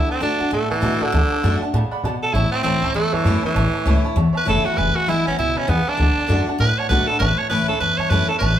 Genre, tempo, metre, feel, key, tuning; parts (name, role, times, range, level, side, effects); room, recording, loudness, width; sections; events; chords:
rockabilly; 198 BPM; 4/4; swing 60% on 8ths; A major; A4 = 439 Hz
raspy tenor saxophone; melody; 0.0-8.6 s; D3 to C#5; -20 LUFS; right 2 dB
bright upright piano; accompaniment; 0.0-8.5 s; B4 to B5; -28 LUFS; right 4 dB
picked steel-string acoustic guitar; accompaniment; 0.0-8.6 s; E2 to F#4; -24 LUFS; left 3 dB
upright bass; bass; 0.0-8.5 s; E1 to B2; -21 LUFS; equal
moderate large studio reverb, RT60 0.9 s; band playing live in one room; -17 LUFS; side -10 dB against mid
0.0-8.6 A section
0.0 D; 2.3 A; 4.8 E; 6.0 D; 7.2 A